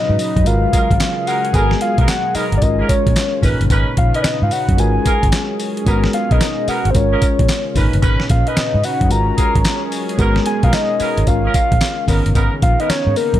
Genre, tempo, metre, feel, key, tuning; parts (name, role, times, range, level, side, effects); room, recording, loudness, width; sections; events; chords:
R&B, new jack swing; 111 BPM; 4/4; swing 65% on 16ths; A4 = 440 Hz
soft octave-layered synth lead; melody; 0.0-13.4 s; A#4 to A#5; -20 LUFS; left 1 dB; chorus, ping-pong delay
FM electric piano with auto-pan; accompaniment; 0.0-13.4 s; A#2 to B4; -24 LUFS; left 3 dB
lush unison pad; sustained chords; 0.0-13.4 s; B2 to B4; -25 LUFS; equal; chorus
vintage muted fingered electric bass; bass; 0.1-13.4 s; G1 to G#2; -18 LUFS; equal
dusty soul sampler-style drum kit; drums; 0.2-13.4 s; handclaps, hi-hat, kick drum, snare drum, tambourine; -18 LUFS; equal
mellow horn section; stabs; 0.7-12.9 s; B3 to B4; -25 LUFS; right 3 dB
digital ambience; -13 LUFS; side -12 dB against mid
0.0-13.4 A section
0.5 F#maj9/G#; 1.5 G#m9; 2.6 A#m7/G#; 3.4 Bmaj9; 4.8 F#maj9/G#; 5.9 G#m9; 6.9 A#m7/G#; 7.8 Bmaj9; 9.1 F#maj9/G#; 10.2 G#m9; 11.3 A#m7/G#; 12.1 Bmaj9